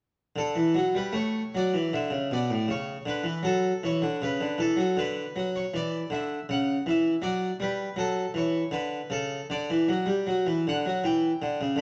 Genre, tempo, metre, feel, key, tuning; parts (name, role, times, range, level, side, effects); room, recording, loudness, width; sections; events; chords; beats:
classical, baroque-style suite movement for harpsichord; 79 BPM; 3/4; rubato; D major; A4 = 441 Hz
harpsichord; solo; 0.4-11.8 s; A2 to G5; -28 LUFS; equal
moderate recital hall reverb, RT60 1.4 s; dark, warm production, nothing above 8.0 kHz; -28 LUFS; mono
0.4-11.8 A section
0.4 D; 1.9 D5; 2.7 Bm11/C#; 5.0 D; 6.5 C#madd11; 7.2 D/F#; 9.5 Dadd9; 11.0 Em
| 0.36 1.14 1.92 | 2.69 3.45 4.21 | 4.97 5.74 6.50 | 7.25 7.99 8.73 | 9.51 10.27 11.02 | 11.78